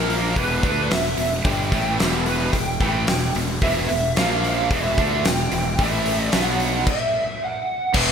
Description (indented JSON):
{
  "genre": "hard rock",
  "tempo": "111 BPM",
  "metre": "4/4",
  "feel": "straight",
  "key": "unclear",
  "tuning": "A4 = 440 Hz",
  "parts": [
    { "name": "lead guitar through a small cranked amp", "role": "melody", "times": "0.0-8.1 s", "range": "G4 to G5", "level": "-24 LUFS", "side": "right 1 dB", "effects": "overdrive, ensemble chorus" },
    { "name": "crunchy overdriven guitar", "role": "riff", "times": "0.0-8.1 s", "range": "E2 to D4", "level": "-28 LUFS", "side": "left 9 dB", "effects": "ensemble chorus" },
    { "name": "high-gain distorted guitar", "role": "riff", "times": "0.0-8.1 s", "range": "E2 to D4", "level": "-26 LUFS", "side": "right 9 dB", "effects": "distortion" },
    { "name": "fuzz fingered electric bass", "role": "bass", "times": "0.0-8.1 s", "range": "E1 to D2", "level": "-26 LUFS", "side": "equal", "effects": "overdrive" },
    { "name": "big rock drum kit", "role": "drums", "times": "0.1-8.1 s", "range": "crash cymbal, hi-hat, kick drum, snare drum", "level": "-23 LUFS", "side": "equal", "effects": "gated reverb" },
    { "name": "distorted electric guitar", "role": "riff", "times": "7.9-8.1 s", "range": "E2 to E3", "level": "-21 LUFS", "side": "left 1 dB", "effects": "overdrive" }
  ],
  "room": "light reverb, small room reverb",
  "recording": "bright 1980s-style digital production",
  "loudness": "-18 LUFS",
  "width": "side -7 dB against mid",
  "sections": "0.0-8.0 A section",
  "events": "stop 6.9-8.0",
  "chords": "0.4 Em; 4.2 A#5; 4.7 Em; 5.8 A5; 6.3 B5; 6.9 N.C."
}